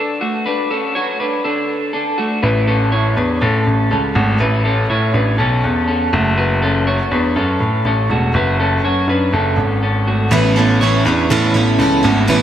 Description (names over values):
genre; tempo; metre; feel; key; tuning
indie pop; 122 BPM; 4/4; straight; A major; A4 = 439 Hz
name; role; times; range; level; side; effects
electric guitar through a small old amp; arpeggios; 0.0-12.4 s; A3 to C#5; -18 LUFS; left 1 dB; wide subtle chorus, tape echo
clear grand piano; bass; 2.4-12.4 s; E1 to A2; -15 LUFS; equal; none
picked plugged-in steel-string acoustic guitar; accompaniment; 10.3-12.4 s; A2 to E4; -15 LUFS; right 4 dB; analog chorus
room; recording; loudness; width
wet lush hall reverb, RT60 3.0 s; dreamy mix soaked in reverb; -13 LUFS; side -10 dB against mid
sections
0.0-10.3 A section; 10.3-12.4 B section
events
none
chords
0.0 D; 2.2 Aadd9; 6.1 F#m; 10.3 Aadd9